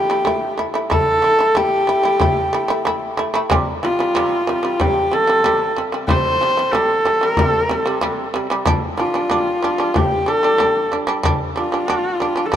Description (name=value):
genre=mongolian traditional, Mongolian folk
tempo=93 BPM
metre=4/4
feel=straight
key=C zhi mode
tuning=A4 = 440 Hz
part: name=rich horsehead fiddle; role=melody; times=0.0-12.6 s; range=F4 to C5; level=-17 LUFS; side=equal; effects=none
part: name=shamisen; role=arpeggios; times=0.0-12.6 s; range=C3 to E4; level=-21 LUFS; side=right 2 dB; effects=none
part: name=frame drum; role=percussion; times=0.3-12.6 s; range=none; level=-23 LUFS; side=left 2 dB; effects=none
room=moderate huge ambient reverb, RT60 7.8 s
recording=dark, warm production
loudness=-15 LUFS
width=side -10 dB against mid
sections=0.0-12.6 A section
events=none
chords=0.0 A5; 3.5 C5; 8.7 G5